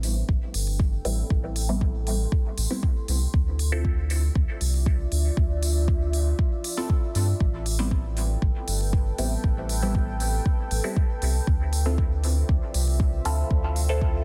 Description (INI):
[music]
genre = dub techno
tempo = 118 BPM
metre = 4/4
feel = straight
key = A minor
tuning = A4 = 439 Hz
[part]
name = deep dark ambient pad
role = sustained chords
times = 0.0-14.2 s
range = F3 to C6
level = -38 LUFS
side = equal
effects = chorus, built-in reverb, sidechain pumping
[part]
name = round analog bass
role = bass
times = 0.0-14.2 s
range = G1 to G2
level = -27 LUFS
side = equal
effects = sidechain pumping
[part]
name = electronic hi-hat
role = drums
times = 0.0-13.9 s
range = none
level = -36 LUFS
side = equal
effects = none
[part]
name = electronic kick drum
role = drums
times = 0.3-14.1 s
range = none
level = -26 LUFS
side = equal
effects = none
[part]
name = filtered dub chord stab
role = stabs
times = 1.1-14.2 s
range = G3 to A4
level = -35 LUFS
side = equal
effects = phaser, sidechain pumping, dub echo
[sound]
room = little or no reverb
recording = dense, heavily limited modern master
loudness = -25 LUFS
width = mono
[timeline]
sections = 0.0-14.2 A section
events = none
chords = 0.0 Am9; 3.3 Dm9; 7.4 Am9; 11.5 Dm9